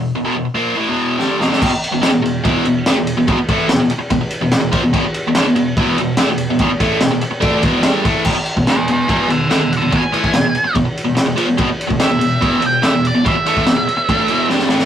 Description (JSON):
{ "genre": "garage rock duo or trio", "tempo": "144 BPM", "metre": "4/4", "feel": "straight", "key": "unclear", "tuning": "A4 = 440 Hz", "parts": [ { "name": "biting overdriven guitar", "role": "riff", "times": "0.0-14.9 s", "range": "E2 to D4", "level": "-16 LUFS", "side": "equal", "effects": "none" }, { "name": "crunchy breakbeat drum kit", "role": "drums", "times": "1.2-14.9 s", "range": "crash cymbal, kick drum, ride cymbal, snare drum", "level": "-17 LUFS", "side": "equal", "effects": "none" }, { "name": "octave-fuzz lead guitar", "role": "melody", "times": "8.7-14.5 s", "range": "G#4 to G#5", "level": "-17 LUFS", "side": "right 2 dB", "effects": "distortion" } ], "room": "moderate small room reverb, RT60 0.5 s", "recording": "rough rehearsal-room recording, warm saturation", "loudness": "-13 LUFS", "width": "side -10 dB against mid", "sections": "0.0-1.6 A section; 1.6-8.3 B section; 8.3-14.9 C section", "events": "break 0.0-1.6; drum fill 1.2-1.6, 14.5-14.9; lead electric guitar solo 8.3-14.9", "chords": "0.0 E5" }